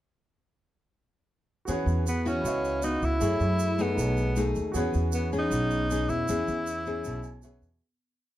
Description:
bossa nova; 156 BPM; 4/4; straight; E major; A4 = 440 Hz
nylon-string guitar; accompaniment; 1.7-7.8 s; B2 to G#4; -31 LUFS; left 3 dB
warm grand piano; accompaniment; 1.7-7.8 s; D#4 to G#5; -36 LUFS; right 4 dB
upright bass; bass; 1.7-7.8 s; B1 to F#2; -29 LUFS; right 1 dB
tube shaker; percussion; 1.7-7.8 s; -44 LUFS; right 7 dB
warm tenor saxophone; melody; 2.1-7.4 s; B3 to E4; -29 LUFS; equal
light reverb; -25 LUFS; side -13 dB against mid
1.7-7.8 A section
fade-out 6.3-7.8; grand piano fill 7.0-7.8
1.7 E6; 2.4 C#m11; 3.2 F#m9; 4.0 B13; 4.7 E6
| 1.67 2.06 2.44 2.83 | 3.21 3.59 3.98 4.36 | 4.75 5.13 5.51 5.90 | 6.28 6.66 7.04 7.43

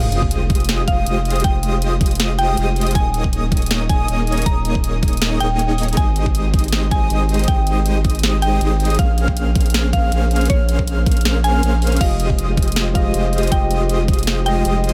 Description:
future bass; 159 BPM; 4/4; swing 54% on 16ths, half-time; F minor; A4 = 440 Hz
mallet-like synth pluck; melody; 0.0-14.9 s; Db5 to Bb5; -27 LUFS; equal; chorus, sidechain pumping, dub echo
airy dreamy lead; arpeggios; 0.0-14.9 s; Eb6 to F6; -32 LUFS; equal; chorus, sidechain pumping
dense compressed supersaw; riff; 0.0-14.9 s; Ab3 to F5; -26 LUFS; equal; sidechain pumping
saturated sub bass; bass; 0.0-14.9 s; Eb1 to Bb1; -21 LUFS; equal; sidechain pumping
sub drop; sound effects; 0.0-1.4 s; -28 LUFS; equal
trap drum kit; drums; 0.1-14.9 s; crash cymbal, hi-hat, snare drum; -27 LUFS; equal
electronic kick drum; drums; 0.2-14.2 s; -20 LUFS; equal; overdrive
tine electric piano; accompaniment; 12.0-14.9 s; F3 to Eb5; -28 LUFS; equal; vintage 12-bit sampler grit, sidechain pumping, dub echo
little or no reverb; -17 LUFS; mono
0.0-14.9 A section
impact 0.0-1.4
0.0 Fm9; 3.0 Eb7sus4; 6.0 Abmaj7; 9.0 Bbm9; 12.0 Fm9
0.31 0.69 1.06 | 1.44 1.82 2.20 2.57 | 2.95 3.33 3.71 4.08 | 4.46 4.84 5.22 5.59 | 5.97 6.35 6.72 7.10 | 7.48 7.86 8.23 8.61 | 8.99 9.37 9.74 10.12 | 10.50 10.88 11.25 11.63 | 12.01 12.38 12.76 13.14 | 13.52 13.89 14.27 14.65

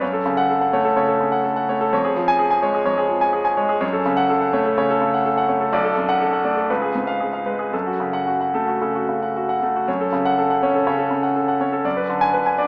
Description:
classical, virtuoso piano study; 110-129 BPM; 4/4; rubato; F# minor; A4 = 441 Hz
clear grand piano; solo; 0.0-12.7 s; B1 to G#5; -20 LUFS; equal
moderate concert hall reverb, RT60 1.8 s; recorded in a church or concert hall, small speaker sound; -20 LUFS; mono
0.0-9.9 A section; 9.9-12.7 A section
0.0 F#m; 1.9 C#/E#; 3.8 F#m; 5.7 Bm7; 6.7 C#7; 7.7 F#m; 11.8 G#dim/F#
| 0.01 0.49 0.96 1.44 | 1.92 2.39 2.87 3.34 | 3.83 4.30 4.78 5.26 | 5.73 6.21 6.70 7.20 | 7.73 8.27 8.81 9.35 | 9.88 10.38 10.87 11.36 | 11.85 12.34

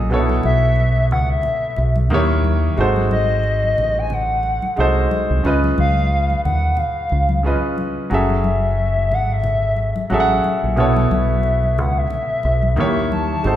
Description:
R&B, neo-soul; 90 BPM; 4/4; swing 57% on 16ths; F# dorian; A4 = 440 Hz
warm baby grand piano; accompaniment; 0.0-13.6 s; B2 to F#5; -20 LUFS; right 1 dB
deep dub fingered electric bass; bass; 0.0-13.6 s; F#1 to D#2; -19 LUFS; equal
congas; percussion; 0.3-13.6 s; -29 LUFS; left 1 dB
hollow clarinet-like synth lead; melody; 0.5-13.6 s; D#5 to A5; -21 LUFS; left 2 dB; chorus
wet large studio reverb, RT60 1.3 s; band playing live in one room; -16 LUFS; side -12 dB against mid
0.0-13.6 A section
0.1 B7sus4; 2.1 D#7b9; 2.8 G#7b9; 5.4 C#9; 8.1 F#m9; 10.8 B7sus4; 12.8 D#7b9
| 0.10 0.77 1.44 2.10 | 2.77 3.44 4.10 4.77 | 5.43 6.10 6.77 7.43 | 8.10 8.77 9.44 10.10 | 10.77 11.44 12.10 12.77 | 13.44

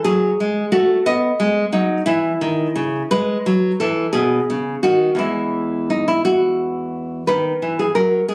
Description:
classical, baroque-style dance for nylon-string guitar; 58 BPM (dotted quarters); 6/8; rubato; E major; A4 = 441 Hz
nylon-string guitar; solo; 0.0-8.3 s; E2 to D#5; -19 LUFS; equal
light reverb; recorded on a phone in the room, club reverb; -19 LUFS; mono
0.0-7.3 A section; 7.3-8.3 A section
0.0 F#m; 1.1 B; 2.1 C#madd9; 3.1 E; 4.1 B; 5.2 E; 7.3 B/D#
0.05 | 1.07 2.07 | 3.12 4.15 | 5.18 6.23 | 7.27 8.28

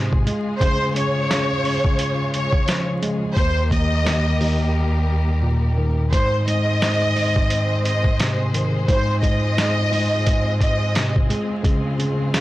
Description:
hip hop, boom-bap hip-hop; 87 BPM; 4/4; swing 57% on 16ths; Ab major; A4 = 440 Hz
tine electric piano; accompaniment; 0.0-12.4 s; Eb2 to Ab3; -20 LUFS; equal; medium stereo tremolo, cassette tape
warm studio string section; sustained chords; 0.0-12.4 s; Ab2 to C5; -30 LUFS; left 1 dB
boom bap sampler-style drum kit; drums; 0.1-12.4 s; hi-hat, kick drum, snare drum; -21 LUFS; equal; vintage 12-bit sampler grit
dark symphonic violin section; melody; 0.6-11.1 s; C5 to Eb5; -24 LUFS; equal; tape echo
moderate studio ambience, RT60 0.5 s; blown-out, overdriven recording, vinyl crackle, overdrive; -17 LUFS; side -16 dB against mid
0.0-12.4 A section
break 0.0-0.6; drums muted 4.7-6.1
0.3 Db; 3.4 Eb; 6.1 Ab; 8.9 Fm/Ab; 11.3 Dbmaj7
| 0.61 1.30 1.99 2.68 | 3.37 4.06 4.75 5.43 | 6.12 6.81 7.50 8.19 | 8.88 9.57 10.26 10.95 | 11.64 12.33

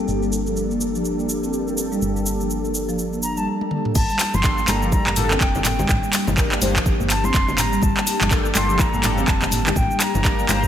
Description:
afro house; 124 BPM; 4/4; swing 59% on 16ths; G minor; A4 = 444 Hz
ethereal airy pad; sustained chords; 0.0-10.7 s; G3 to A4; -28 LUFS; left 1 dB; ensemble chorus, built-in reverb, sidechain pumping
buzzing marimba with soft mallets; arpeggios; 0.0-10.7 s; F3 to C4; -28 LUFS; right 1 dB; sidechain pumping, low-pass filter, tape echo
mellow synth brass; stabs; 0.0-10.6 s; Bb3 to C5; -28 LUFS; left 2 dB; chorus, phaser, sidechain pumping, tape echo
woody FM bass; bass; 0.0-10.7 s; F1 to G1; -26 LUFS; equal; sidechain pumping
afro-pop drum kit; drums; 0.1-10.7 s; crash cymbal, handclaps, hi-hat, shaker, toms; -23 LUFS; equal; low-pass filter on snare, studio reverb, low-pass filter on toms, low-pass filter on hats, low-pass filter on perc, low-pass filter on cymbals
reedy concert flute; melody; 3.2-10.7 s; G5 to C6; -26 LUFS; left 1 dB; tape echo
electronic kick drum; drums; 4.0-10.7 s; -21 LUFS; equal; studio reverb
congas; percussion; 4.0-10.6 s; -29 LUFS; left 3 dB
moderate lush hall reverb, RT60 1.7 s; dreamy mix soaked in reverb; -18 LUFS; side -10 dB against mid
0.0-4.0 A section; 4.0-10.7 B section
filter sweep on drum 0.0-4.0; drum fill 3.6-4.0; drop 4.0-10.7
0.0 Gmadd9
| 0.08 0.57 1.05 1.53 | 2.02 2.50 2.99 3.47 | 3.95 4.44 4.92 5.41 | 5.89 6.37 6.86 7.34 | 7.83 8.31 8.79 9.28 | 9.76 10.24

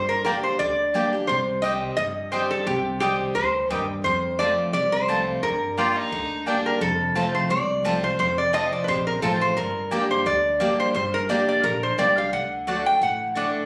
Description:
bluegrass; 174 BPM; 4/4; swing 54% on 8ths; G minor; A4 = 440 Hz
lap resonator guitar; melody; 0.0-13.7 s; G4 to G5; -25 LUFS; equal; plate reverb
picked steel-string acoustic guitar; accompaniment; 0.0-13.7 s; F2 to G4; -30 LUFS; equal
upright bass; bass; 0.0-13.5 s; F1 to G2; -37 LUFS; equal
mandolin; stabs; 0.3-13.5 s; A3 to A5; -30 LUFS; equal
clear fiddle; second line; 5.8-6.8 s; D4 to F4; -29 LUFS; equal
moderate small room reverb, RT60 0.5 s; recorded on a phone in the room, studio reverb; -23 LUFS; mono
0.0-6.8 A section; 6.8-13.7 B section
0.0 Gm; 1.3 Cm; 4.1 F; 5.4 Gm; 6.8 F; 9.6 Gm; 12.3 D
0.26 0.60 0.95 | 1.29 1.64 1.98 2.33 | 2.67 3.02 3.36 3.71 | 4.05 4.40 4.74 5.09 | 5.43 5.78 6.12 6.47 | 6.81 7.16 7.50 7.85 | 8.19 8.54 8.88 9.22 | 9.57 9.91 10.26 10.60 | 10.95 11.29 11.64 11.98 | 12.33 12.67 13.02 13.36

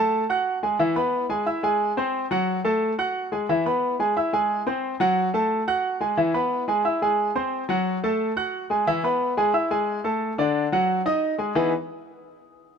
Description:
latin; 178 BPM; 4/4; straight; E major; A4 = 440 Hz
clear baby grand piano; accompaniment; 0.0-11.7 s; D3 to F#6; -21 LUFS; equal
light reverb; -21 LUFS; side -6 dB against mid
0.0-8.9 A section; 8.9-11.6 B section; 11.6-12.8 C section
0.1 F#madd9; 0.8 E; 1.5 G#aug; 2.1 F#dim; 2.8 F#madd9; 3.5 E; 4.2 G#aug; 4.8 F#dim; 5.5 F#madd9; 6.2 E; 6.8 G#aug; 7.5 F#dim; 8.2 F#madd9; 8.9 E; 9.5 Eadd11/G#; 10.2 D; 10.9 D#madd11/F#; 11.6 Emaj7
0.12 0.46 | 0.79 1.13 1.46 1.80 | 2.14 2.47 2.81 3.15 | 3.48 3.82 4.16 4.49 | 4.83 5.17 5.50 5.84 | 6.18 6.51 6.85 7.19 | 7.52 7.86 8.20 8.53 | 8.87 9.20 9.54 9.88 | 10.21 10.55 10.88 11.22 | 11.55

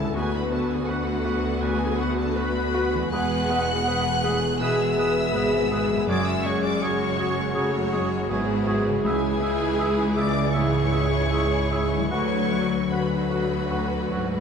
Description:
cinematic; 80 BPM; 4/4; uneven beats, rubato; B dorian; A4 = 440 Hz
clear studio violin section; melody; 0.0-14.4 s; F#5 to F#6; -32 LUFS; left 3 dB
clear studio violin section; second line; 0.0-14.4 s; C#4 to C#5; -34 LUFS; left 3 dB
flute section; second line; 0.0-14.4 s; F#4 to F#5; -31 LUFS; left 1 dB
clear baby grand piano; accompaniment; 0.0-14.4 s; C#2 to B4; -29 LUFS; left 1 dB
warm studio viola section; accompaniment; 0.0-14.4 s; D3 to B3; -30 LUFS; right 2 dB
mellow French horn section; sustained chords; 0.0-14.4 s; E3 to G#4; -30 LUFS; left 2 dB
concert harp; arpeggios; 0.0-14.4 s; F#2 to B4; -34 LUFS; left 8 dB
rich studio cello section; bass; 0.0-14.4 s; C#2 to G#2; -31 LUFS; right 2 dB
rich studio double bass section; bass; 0.0-14.4 s; E1 to D2; -30 LUFS; right 4 dB
warm clarinet; second line; 0.2-14.3 s; F#4 to G#4; -34 LUFS; equal
warm oboe; second line; 0.2-14.3 s; B4 to F#5; -35 LUFS; right 3 dB
wet scoring stage reverb, RT60 1.9 s; dark, warm production; -21 LUFS; side -6 dB against mid
0.0-14.4 A section
0.2 Bm/D; 3.1 E; 6.1 F#sus2; 9.1 C#m; 12.1 Bm/D
| 0.16 0.89 1.62 2.36 | 3.12 3.87 4.61 5.35 | 6.09 6.82 7.56 8.31 | 9.06 9.80 10.55 11.33 | 12.12 12.92 13.71

